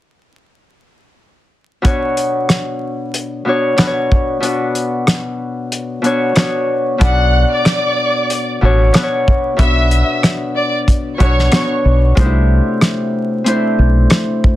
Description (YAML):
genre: hip hop, boom-bap hip-hop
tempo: 93 BPM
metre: 4/4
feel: swing 57% on 16ths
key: B minor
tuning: A4 = 438 Hz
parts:
  - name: Celtic harp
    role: accompaniment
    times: 1.8-14.6 s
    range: B2 to D5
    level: -16 LUFS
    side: left 1 dB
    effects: cassette tape, high-pass filter, low-pass filter
  - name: cloth-damped thuddy drum kit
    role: drums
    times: 1.8-14.6 s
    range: hi-hat, kick drum, rim click, snare drum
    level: -14 LUFS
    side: equal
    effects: none
  - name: warm studio violin section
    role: melody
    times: 7.0-11.7 s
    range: C#5 to F#6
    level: -18 LUFS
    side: left 1 dB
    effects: high-pass filter, low-pass filter, ping-pong delay
  - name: deep dub fingered electric bass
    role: bass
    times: 7.0-14.1 s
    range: A1 to C2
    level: -12 LUFS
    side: equal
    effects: none
room: light reverb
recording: dense, heavily limited modern master, vinyl crackle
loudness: -12 LUFS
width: side -14 dB against mid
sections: 1.8-7.0 A section; 7.0-14.6 B section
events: kick muted 4.4-7.0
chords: 1.8 Bmadd9; 12.2 C6